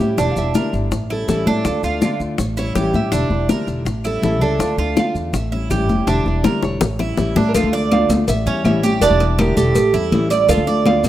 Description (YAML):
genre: latin, Cuban son and guajira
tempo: 163 BPM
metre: 4/4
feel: straight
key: D harmonic minor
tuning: A4 = 440 Hz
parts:
  - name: nylon-string guitar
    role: melody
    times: 0.0-11.1 s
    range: A4 to F5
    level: -26 LUFS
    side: right 1 dB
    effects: none
  - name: fingerpicked steel-string acoustic guitar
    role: accompaniment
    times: 0.0-11.1 s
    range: D3 to F4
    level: -22 LUFS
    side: left 3 dB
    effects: none
  - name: Cuban tres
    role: arpeggios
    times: 0.0-11.0 s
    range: C#4 to D5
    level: -21 LUFS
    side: right 6 dB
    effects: none
  - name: upright bass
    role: bass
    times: 0.0-11.1 s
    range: E1 to A2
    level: -21 LUFS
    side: equal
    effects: none
  - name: bongos and cowbell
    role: percussion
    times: 0.0-11.1 s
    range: none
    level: -23 LUFS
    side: left 5 dB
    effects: none
  - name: congas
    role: percussion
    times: 0.0-11.1 s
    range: none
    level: -22 LUFS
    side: left 1 dB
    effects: none
  - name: maracas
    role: percussion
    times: 0.0-11.1 s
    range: none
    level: -34 LUFS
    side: left 2 dB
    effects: none
  - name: claves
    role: percussion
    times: 0.6-11.0 s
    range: none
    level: -36 LUFS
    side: left 5 dB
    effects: none
room: light reverb, small room ambience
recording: rough home demo mix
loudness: -15 LUFS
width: side -13 dB against mid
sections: 0.0-7.5 A section; 7.5-11.1 B section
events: drum fill 6.4-7.5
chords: 0.2 Em7b5; 0.9 A7; 1.7 Dm; 2.4 A7; 3.1 Em7b5; 3.9 A7; 4.6 Dm; 5.3 A7; 6.1 Em7b5; 6.8 A7; 7.5 Dm; 8.3 A7; 9.0 Em7b5; 9.8 A7; 10.5 Dm